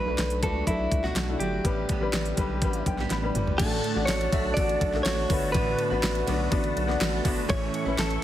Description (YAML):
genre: piano-driven pop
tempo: 123 BPM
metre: 4/4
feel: straight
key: unclear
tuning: A4 = 440 Hz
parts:
  - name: direct-recorded clean electric guitar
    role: melody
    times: 0.0-8.2 s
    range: E4 to D5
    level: -30 LUFS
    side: equal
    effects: spring reverb, tape echo
  - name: warm upright piano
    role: accompaniment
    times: 0.0-8.2 s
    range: A2 to B5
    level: -31 LUFS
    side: left 5 dB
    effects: none
  - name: picked steel-string acoustic guitar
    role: riff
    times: 0.0-8.2 s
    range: A2 to G4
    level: -33 LUFS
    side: right 7 dB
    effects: none
  - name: round analog bass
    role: bass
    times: 0.1-8.2 s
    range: G1 to C#2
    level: -31 LUFS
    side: equal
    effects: none
  - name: pop drum kit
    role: drums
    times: 0.2-8.2 s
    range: crash cymbal, hi-hat, kick drum, ride cymbal, snare drum, toms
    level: -29 LUFS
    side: equal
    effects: none
  - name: tonewheel organ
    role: sustained chords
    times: 3.6-8.2 s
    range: A4 to C#6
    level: -36 LUFS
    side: equal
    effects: chorus vibrato, slow rotary speaker
room: light reverb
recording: heavily compressed radio sound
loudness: -24 LUFS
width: side -12 dB against mid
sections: 0.0-3.6 A section; 3.6-8.2 B section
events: upright piano fill 2.6-3.6; drum fill 3.1-3.6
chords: 0.0 Bm7; 1.6 G/A; 3.6 D/A; 5.5 Bm/A; 7.5 A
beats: 0.18 0.67 1.16 | 1.64 2.13 2.62 3.11 | 3.59 4.08 4.57 5.06 | 5.54 6.03 6.52 7.00 | 7.49 7.98